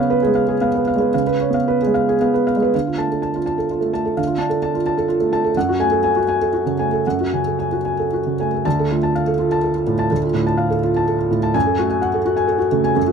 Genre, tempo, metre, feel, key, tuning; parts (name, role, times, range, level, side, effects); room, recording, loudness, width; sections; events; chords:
neoclassical minimalist piano; 110-132 BPM; 3/4; rubato; A4 = 440 Hz
felt-muted upright piano; solo; 0.0-13.1 s; D2 to A5; -16 LUFS; right 1 dB
little or no reverb; close, detailed microphones; -16 LUFS; side -6 dB against mid
0.0-2.7 A section; 2.7-8.6 B section; 8.6-13.1 C section
0.0 C#7; 2.7 Dm; 5.6 F#madd9; 8.6 Dm; 11.5 F#madd9